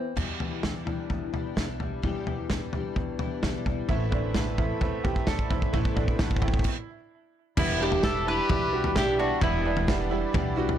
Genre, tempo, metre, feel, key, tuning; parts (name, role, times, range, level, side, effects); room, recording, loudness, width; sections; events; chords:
indie folk with a building arrangement; 130 BPM; 4/4; straight; E minor; A4 = 440 Hz
fingerpicked steel-string acoustic guitar; accompaniment; 0.0-5.7 s; E2 to G4; -37 LUFS; left 4 dB
picked twelve-string acoustic guitar; accompaniment; 0.2-10.8 s; E2 to E4; -36 LUFS; left 8 dB; ensemble chorus
upright bass; bass; 0.2-10.8 s; E1 to E2; -34 LUFS; equal
natural country drum kit; drums; 0.2-10.8 s; crash cymbal, kick drum, snare drum, toms; -27 LUFS; equal
warm grand piano; accompaniment; 3.9-10.8 s; A1 to G5; -34 LUFS; right 8 dB
pedal harmonium; sustained chords; 3.9-10.8 s; G4 to B5; -36 LUFS; left 1 dB; stereo widening
bright upright piano; arpeggios; 3.9-10.8 s; D4 to A4; -34 LUFS; right 8 dB; tape echo
mandolin; melody; 7.6-9.9 s; E4 to B4; -28 LUFS; right 1 dB; tape echo
warm fiddle; second line; 7.6-9.8 s; B3 to G4; -34 LUFS; left 4 dB; tape echo
light reverb, small room ambience; blown-out, overdriven recording, overdrive; -25 LUFS; side -10 dB against mid
0.2-7.6 A section; 7.6-10.8 B section
build-up 0.2-7.6; drum fill 0.2-6.7; stop 6.7-7.6
0.2 Em7; 3.9 Amadd9; 7.6 Em7